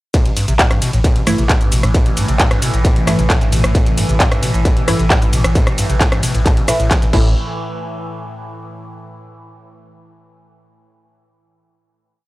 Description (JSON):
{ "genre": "driving peak-time techno", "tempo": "133 BPM", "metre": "4/4", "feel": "straight", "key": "A minor", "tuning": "A4 = 443 Hz", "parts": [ { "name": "overdriven acid bass", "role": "riff", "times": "0.1-7.3 s", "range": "G2 to E3", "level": "-21 LUFS", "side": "equal", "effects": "lush chorus, sidechain pumping, analog delay" }, { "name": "overtone-sweeping drone", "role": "drone", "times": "0.9-7.4 s", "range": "A2 to E3", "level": "-23 LUFS", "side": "equal", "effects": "chorus, built-in reverb, phaser, sidechain pumping" }, { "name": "dusty soul sampler-style drum kit", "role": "drums", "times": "0.1-7.1 s", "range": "hi-hat, snare drum", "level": "-31 LUFS", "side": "equal", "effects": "none" }, { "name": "electronic kick drum", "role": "drums", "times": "0.1-7.2 s", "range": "none", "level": "-15 LUFS", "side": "equal", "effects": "distortion, studio reverb" }, { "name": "techno drum kit", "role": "drums", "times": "0.1-7.2 s", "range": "crash cymbal, handclaps, hi-hat, ride cymbal, rim click, shaker", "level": "-20 LUFS", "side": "equal", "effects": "studio reverb" }, { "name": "warm sub bass", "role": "bass", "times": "0.3-7.3 s", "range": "A1", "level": "-19 LUFS", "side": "equal", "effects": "overdrive, sidechain pumping, low-pass filter" }, { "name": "filtered dub chord stab", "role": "stabs", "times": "1.3-7.3 s", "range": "E3 to E4", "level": "-22 LUFS", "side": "equal", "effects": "phaser, sidechain pumping, analog delay" } ], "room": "little or no reverb", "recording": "dry, gritty hardware recording, transformer saturation", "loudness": "-12 LUFS", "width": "side -18 dB against mid", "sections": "0.1-7.4 drop; 7.4-9.2 final hit", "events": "drop 0.1-7.4", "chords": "0.1 A5; 7.4 N.C." }